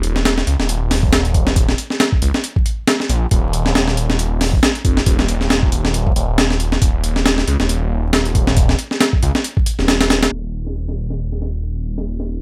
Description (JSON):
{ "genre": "breakbeat, breaks", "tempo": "137 BPM", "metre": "4/4", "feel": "swing 57% on 16ths", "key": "unclear", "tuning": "A4 = 439 Hz", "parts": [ { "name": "phased detuned saw bass", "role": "bass", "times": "0.0-12.4 s", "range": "Eb1 to Db2", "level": "-21 LUFS", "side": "equal", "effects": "phaser" }, { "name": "breakbeat sampler-style drum kit", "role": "drums", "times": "0.0-12.4 s", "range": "hi-hat, kick drum, snare drum", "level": "-18 LUFS", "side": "equal", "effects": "high-pass filter on snare, high-pass filter on hats, high-pass filter on kick" } ], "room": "little or no reverb", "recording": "vinyl crackle, low-pass filter", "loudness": "-17 LUFS", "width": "mono", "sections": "0.0-10.3 A section; 10.3-12.4 B section", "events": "filter sweep 10.3-12.4", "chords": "none", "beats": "0.25 0.69 1.12 | 1.56 2.00 2.44 2.88 | 3.31 3.75 4.19 4.63 | 5.07 5.50 5.94 6.38 | 6.82 7.26 7.70 8.13 | 8.57 9.01 9.45 9.88 | 10.32 10.76 11.20 11.64 | 12.07" }